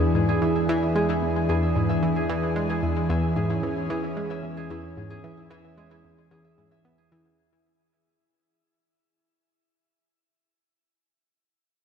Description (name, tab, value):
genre	ambient, sequencer-driven space music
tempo	112 BPM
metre	4/4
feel	straight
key	unclear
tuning	A4 = 440 Hz
part	lush unison pad	sustained chords	0.0-7.3 s	E2 to G#4	-25 LUFS	equal	chorus, shimmer reverb
part	concert harp	arpeggios	0.0-9.7 s	E4 to E5	-31 LUFS	right 1 dB	auto-pan, ping-pong delay, shimmer reverb
part	analog pluck	riff	0.0-7.3 s	E2 to B3	-27 LUFS	left 1 dB	chorus, ping-pong delay, shimmer reverb
room	moderate plate reverb, RT60 2.7 s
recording	dreamy mix soaked in reverb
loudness	-22 LUFS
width	side -7 dB against mid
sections	0.0-7.4 A section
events	fade-out 0.0-7.4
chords	0.0 E7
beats	0.42 | 0.96 1.49 2.03 2.56 | 3.10 3.63 4.17 4.71 | 5.24 5.78 6.31 6.85